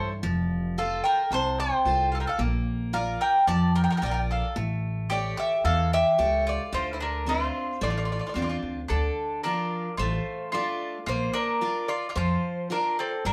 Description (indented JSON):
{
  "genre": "greek folk, Greek bouzouki band",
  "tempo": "111 BPM",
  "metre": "4/4",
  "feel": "straight",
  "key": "D minor",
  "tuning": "A4 = 440 Hz",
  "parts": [
    { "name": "Greek bouzouki", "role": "melody", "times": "0.0-13.3 s", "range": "A4 to A5", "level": "-29 LUFS", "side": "equal", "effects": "none" },
    { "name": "bowl-back mandolin", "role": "second line", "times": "0.0-13.3 s", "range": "C4 to D5", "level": "-34 LUFS", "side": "equal", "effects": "none" },
    { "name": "picked steel-string acoustic guitar", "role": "accompaniment", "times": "0.0-13.3 s", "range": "C3 to D5", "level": "-34 LUFS", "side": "equal", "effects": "none" },
    { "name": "upright bass", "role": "bass", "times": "0.0-13.3 s", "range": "F1 to G2", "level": "-32 LUFS", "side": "equal", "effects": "none" }
  ],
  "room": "wet studio reverb, RT60 0.8 s",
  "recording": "band playing live in one room",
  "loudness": "-26 LUFS",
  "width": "mono",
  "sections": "0.0-8.9 A section; 8.9-13.3 B section",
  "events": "none",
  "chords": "0.2 F; 2.4 Bb; 4.6 A7; 6.7 Dm7; 8.9 Dm; 11.1 Bb"
}